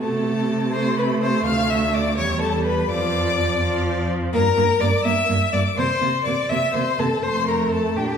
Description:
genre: quick classical-period movement for string quartet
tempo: 83 BPM (dotted quarters)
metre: 6/8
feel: straight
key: unclear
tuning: A4 = 440 Hz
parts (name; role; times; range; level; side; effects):
- clear violin; melody; 0.0-8.2 s; G5 to F6; -26 LUFS; left 7 dB; none
- warm violin; second line; 0.0-8.2 s; G4 to F5; -23 LUFS; left 2 dB; none
- rich viola; accompaniment; 0.0-8.2 s; F3 to D4; -25 LUFS; right 3 dB; none
- warm cello; bass; 0.0-8.2 s; D2 to C3; -24 LUFS; right 2 dB; none
room: wet recital hall reverb, RT60 1.7 s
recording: heard from further back in the room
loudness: -18 LUFS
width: side -7 dB against mid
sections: 0.0-8.2 A section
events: none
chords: 0.0 Am/C; 1.5 D5; 2.2 A9/E; 2.9 Dm/F; 4.3 Gm; 5.8 C13; 7.2 F

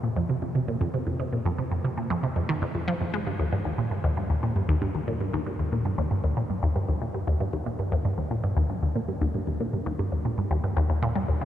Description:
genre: ambient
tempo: 116 BPM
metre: 4/4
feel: straight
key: unclear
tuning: A4 = 441 Hz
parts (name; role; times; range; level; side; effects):
- resonant blip pluck; solo; 0.0-11.4 s; Eb2 to Ab3; -25 LUFS; equal; phaser, analog delay
room: wet huge ambient reverb, RT60 7.4 s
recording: in a vast, echoing space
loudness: -25 LUFS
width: side -11 dB against mid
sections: 0.0-11.4 A section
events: none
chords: none

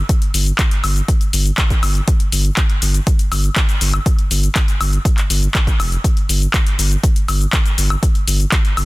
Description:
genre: acid house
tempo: 121 BPM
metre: 4/4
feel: straight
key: unclear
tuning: A4 = 440 Hz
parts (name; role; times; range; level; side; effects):
- round analog bass; bass; 0.0-8.8 s; F1 to G1; -16 LUFS; equal; sidechain pumping
- electronic kick drum; drums; 0.1-8.6 s; none; -15 LUFS; equal; overdrive
- punchy analog drum machine; drums; 0.1-8.8 s; handclaps, hi-hat, shaker, woodblock; -20 LUFS; left 2 dB; overdrive
room: little or no reverb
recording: dense, heavily limited modern master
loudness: -14 LUFS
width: side -21 dB against mid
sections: 0.0-8.8 A section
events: none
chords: none

